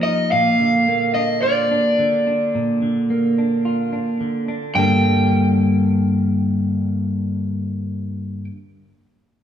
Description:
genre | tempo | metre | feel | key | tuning
rock | 108 BPM | 4/4 | straight | G minor | A4 = 440 Hz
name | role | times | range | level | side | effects
raw garage guitar | melody | 0.0-8.4 s | D5 to G5 | -19 LUFS | left 1 dB | overdrive
clean electric guitar | arpeggios | 0.0-8.5 s | G2 to A4 | -18 LUFS | equal | spring reverb
room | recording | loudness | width
wet stone room reverb, RT60 1.3 s | band playing live in one room | -16 LUFS | side -9 dB against mid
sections
0.0-4.8 A section; 4.8-7.0 B section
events
none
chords
0.3 Bb; 4.8 Gmadd9

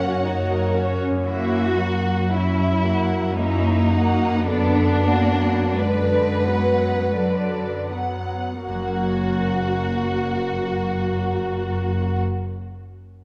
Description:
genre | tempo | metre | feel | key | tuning
classical, slow romantic movement for symphony orchestra | 38-60 BPM | 3/4 | rubato | F# major | A4 = 440 Hz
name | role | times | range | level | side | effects
dark symphonic violin section | melody | 0.0-12.2 s | D5 to F#5 | -34 LUFS | equal | none
warm studio violin section | second line | 0.0-12.2 s | C#4 to C#5 | -27 LUFS | equal | none
warm chamber viola section | accompaniment | 0.0-12.2 s | D3 to F#4 | -29 LUFS | equal | none
mellow French horn section | sustained chords | 0.0-0.9 s | F#3 to A#3 | -32 LUFS | equal | none
concert harp | arpeggios | 0.0-12.6 s | F#2 to F#5 | -33 LUFS | equal | none
rich symphonic cello section | bass | 0.0-12.2 s | F#2 to F#4 | -28 LUFS | equal | none
warm studio double bass section | bass | 0.0-12.2 s | F#1 to F#2 | -28 LUFS | equal | none
room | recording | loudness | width
wet scoring stage reverb, RT60 2.1 s | dark, warm production | -22 LUFS | mono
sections
0.0-1.3 A section; 1.3-8.7 B section; 8.7-13.1 C section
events
slowing down 0.0-8.7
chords
0.0 F#; 1.3 F#7; 4.5 Bm/F#; 8.7 F#

